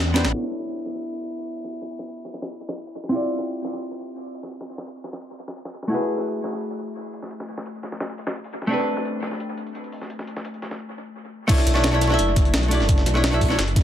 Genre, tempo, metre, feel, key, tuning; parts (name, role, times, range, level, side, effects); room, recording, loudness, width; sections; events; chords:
liquid drum and bass; 172 BPM; 4/4; straight; B minor; A4 = 439 Hz
swelling detuned saw bass; bass; 0.0-0.3, 11.7-13.8 s; F#1 to E2; -22 LUFS; equal
archtop guitar, miked and amplified; accompaniment; 0.1-13.6 s; A3 to E5; -26 LUFS; equal; dub echo
breakbeat sampler-style drum kit; drums; 0.2-0.3, 11.5-13.8 s; crash cymbal, hi-hat, snare drum; -27 LUFS; equal; dub echo
dusty soul sampler-style drum kit; drums; 0.2-13.8 s; hi-hat, snare drum; -33 LUFS; equal; high-pass filter on hats, low-pass filter on hats, high-pass filter on snare, low-pass filter on snare, dub echo
electronic kick drum; drums; 11.5-13.8 s; -19 LUFS; equal
light reverb; echo-heavy mix, low-pass filter; -22 LUFS; side -11 dB against mid
0.3-11.5 A section; 11.5-13.8 B section
drum fill 0.0-0.3; filter sweep 0.3-11.5; drop 11.5-13.8
0.3 Bm11; 3.1 Dm11; 5.9 F#m11; 8.7 Am11; 11.5 Bm11